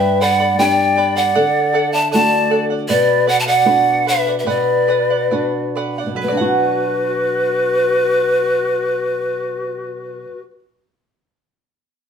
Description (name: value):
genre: andean folk, Andean ensemble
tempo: 63-78 BPM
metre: 2/4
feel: straight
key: B minor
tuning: A4 = 440 Hz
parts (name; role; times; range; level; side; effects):
- breathy bright pan flute; melody; 0.0-10.4 s; B4 to A5; -17 LUFS; equal; none
- large quena; second line; 0.0-10.4 s; F#4 to E5; -21 LUFS; left 4 dB; none
- charango; accompaniment; 0.0-10.6 s; G4 to B5; -22 LUFS; right 2 dB; none
- flamenco guitar; accompaniment; 0.0-10.6 s; G2 to G4; -23 LUFS; right 2 dB; none
room: wet studio reverb, RT60 0.8 s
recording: band playing live in one room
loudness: -14 LUFS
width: side -7 dB against mid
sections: 0.0-6.2 A section; 6.2-10.1 B section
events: slowing down 2.9-6.2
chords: 0.0 G; 1.4 D; 2.9 Bm